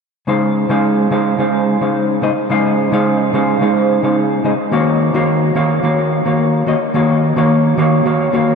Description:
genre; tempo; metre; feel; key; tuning
chillout; 108 BPM; 4/4; straight; unclear; A4 = 440 Hz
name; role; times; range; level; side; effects
hollow-body jazz guitar; accompaniment; 0.3-8.6 s; Db3 to F5; -12 LUFS; equal; auto-pan, diffuse ambient delay
room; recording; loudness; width
wet huge ambient reverb, RT60 7.5 s; dreamy mix soaked in reverb; -12 LUFS; side -5 dB against mid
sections
0.3-8.6 A section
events
none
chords
0.3 Dbmaj9; 4.7 Ebm9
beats
| 0.28 0.84 1.39 1.95 | 2.50 3.06 3.62 4.17 | 4.73 5.28 5.84 6.39 | 6.95 7.50 8.06

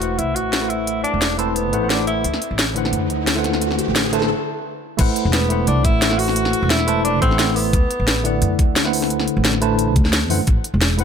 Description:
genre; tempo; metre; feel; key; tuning
liquid drum and bass; 175 BPM; 4/4; swing 54% on 16ths; A dorian; A4 = 440 Hz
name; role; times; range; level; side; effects
warm tenor saxophone; melody; 0.0-2.6, 5.3-8.6 s; B3 to F#4; -23 LUFS; left 1 dB; low-pass filter, dub echo
tine electric piano; accompaniment; 0.0-11.0 s; D3 to A5; -22 LUFS; equal; medium stereo tremolo, low-pass filter, ping-pong delay
upright bass; bass; 0.0-11.0 s; E1 to F#2; -22 LUFS; equal; none
drum and bass drum kit; drums; 0.0-11.0 s; crash cymbal, hi-hat, snare drum; -21 LUFS; equal; none
riser; sound effects; 2.4-4.3 s; none; -29 LUFS; equal; none
electronic kick drum; drums; 5.0-10.5 s; none; -17 LUFS; equal; none
room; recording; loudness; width
light reverb, digital ambience; none; -16 LUFS; side -7 dB against mid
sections
0.0-5.0 A section; 5.0-11.0 B section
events
build-up 0.0-5.0; riser 2.4-4.3; break 4.3-5.0; drop 5.0-11.0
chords
0.0 Am69; 2.2 D13; 5.0 Am69; 7.7 D13; 10.5 A5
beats
0.19 0.53 | 0.87 1.22 1.56 1.90 | 2.25 2.59 2.93 3.27 | 3.62 3.96 4.30 4.64 | 4.99 5.33 5.67 6.02 | 6.36 6.70 7.04 7.39 | 7.73 8.07 8.42 8.76 | 9.10 9.45 9.79 10.13 | 10.47 10.82

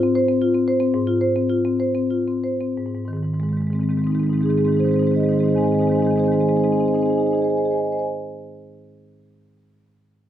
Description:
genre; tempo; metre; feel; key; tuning
classical, contemporary piece for solo marimba; 60-80 BPM (dotted quarters); 6/8; rubato; Ab major; A4 = 440 Hz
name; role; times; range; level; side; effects
marimba with medium mallets; solo; 0.0-8.1 s; Ab2 to Ab5; -18 LUFS; equal; none
room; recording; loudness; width
light reverb; none; -18 LUFS; side -11 dB against mid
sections
0.0-2.8 A section; 2.8-6.6 B section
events
slowing down 0.0-2.8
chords
0.0 Ab6; 2.8 Ab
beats
0.17 | 0.95 1.80 | 2.77 3.74 | 4.71 5.66

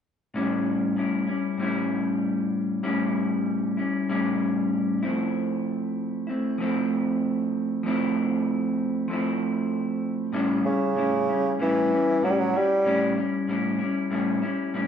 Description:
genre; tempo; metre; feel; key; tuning
indie pop, bedroom pop; 96 BPM; 4/4; straight; unclear; A4 = 439 Hz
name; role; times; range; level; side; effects
electric guitar through a small old amp; accompaniment; 0.3-14.9 s; A2 to E4; -24 LUFS; equal; warbly pitch drift
clear bassoon; melody; 10.7-13.2 s; C#3 to G3; -22 LUFS; right 1 dB; none
room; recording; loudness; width
wet large studio reverb, RT60 1.3 s; band playing live in one room; -23 LUFS; side -8 dB against mid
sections
0.3-10.4 A section; 10.4-14.9 B section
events
none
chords
0.3 A7; 5.0 Fmaj7; 10.4 A7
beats
| 0.35 0.97 1.60 2.22 | 2.85 3.48 4.10 4.72 | 5.35 5.98 6.60 7.23 | 7.85 8.48 9.10 9.73 | 10.35 10.98 11.60 12.23 | 12.85 13.48 14.10 14.73

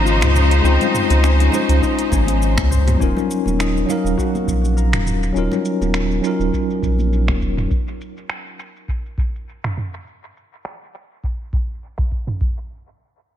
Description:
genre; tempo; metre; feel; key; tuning
sunset chillout; 102 BPM; 4/4; swing 55% on 16ths; Eb dorian; A4 = 440 Hz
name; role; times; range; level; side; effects
bell-like tine electric piano; accompaniment; 0.0-7.7 s; Gb3 to F5; -21 LUFS; moving between left 6 dB and right 4 dB; fast stereo tremolo, auto-pan, analog delay
bright symphonic string section; sustained chords; 0.0-3.0 s; Db3 to C5; -21 LUFS; right 1 dB; vintage 12-bit sampler grit
concert harp; arpeggios; 0.0-6.9 s; C4 to C5; -26 LUFS; left 9 dB; vintage 12-bit sampler grit, low-pass filter, analog delay
round analog bass; bass; 0.0-7.7 s; Eb1 to Db2; -17 LUFS; equal; none
deep house drum kit; drums; 0.1-12.4 s; finger snaps, hi-hat, shaker, toms; -26 LUFS; right 2 dB; low-pass filter on perc, low-pass filter on hats, low-pass filter on toms, low-pass filter on snare, dub echo
congas; percussion; 0.2-7.4 s; none; -30 LUFS; left 3 dB; dub echo
electronic kick drum; drums; 1.8-12.5 s; none; -22 LUFS; equal; overdrive
room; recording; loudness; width
light reverb; echo-heavy mix; -16 LUFS; side -10 dB against mid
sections
0.0-3.0 A section; 3.0-12.4 B section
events
filter sweep on drum 3.0-12.4; filter sweep on harp 3.0-5.4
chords
0.0 Dbmaj9; 3.0 Ebm7; 7.7 N.C.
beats
0.06 | 0.65 1.23 1.82 2.41 | 3.00 3.59 4.17 4.76 | 5.35 5.94 6.53 7.12 | 7.70 8.29 8.88 9.47 | 10.06 10.65 11.23 11.82 | 12.41

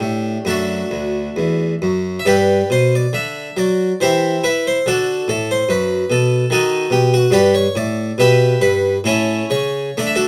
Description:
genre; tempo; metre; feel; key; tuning
classical, baroque-style suite movement for harpsichord; 70 BPM; 3/4; uneven beats, rubato; unclear; A4 = 440 Hz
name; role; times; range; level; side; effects
harpsichord; solo; 0.0-10.3 s; D2 to E5; -17 LUFS; equal; none
room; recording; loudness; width
moderate studio reverb, RT60 0.5 s; close, detailed microphones; -17 LUFS; mono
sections
0.0-10.3 A section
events
none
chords
0.0 D; 2.3 G; 4.0 C/E; 4.9 D; 6.5 B7/D#; 7.3 G69; 9.1 A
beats
0.45 1.35 | 2.26 3.13 4.00 | 4.85 5.69 6.52 | 7.34 8.19 9.06 | 9.98

